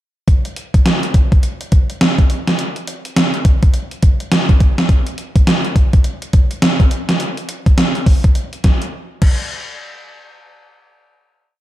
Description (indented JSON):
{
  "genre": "R&B",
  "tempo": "104 BPM",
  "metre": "4/4",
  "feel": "swing 61% on 16ths",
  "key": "none",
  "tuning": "none",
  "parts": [
    { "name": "gated 80s digital drum machine", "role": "drums", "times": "0.3-9.4 s", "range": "crash cymbal, hi-hat, kick drum, snare drum", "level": "-12 LUFS", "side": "equal", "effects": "gated reverb, gated reverb snare, overdrive" }
  ],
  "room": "little or no reverb",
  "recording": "dark, warm production",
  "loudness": "-12 LUFS",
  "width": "side -15 dB against mid",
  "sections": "0.3-9.5 verse; 9.5-11.6 final hit",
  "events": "silent gap 8.9-9.5",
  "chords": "none",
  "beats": "| 0.28 0.85 1.43 2.01 | 2.58 3.16 3.74 4.32 | 4.89 5.47 6.05 6.62 | 7.20 7.78 8.35 8.93"
}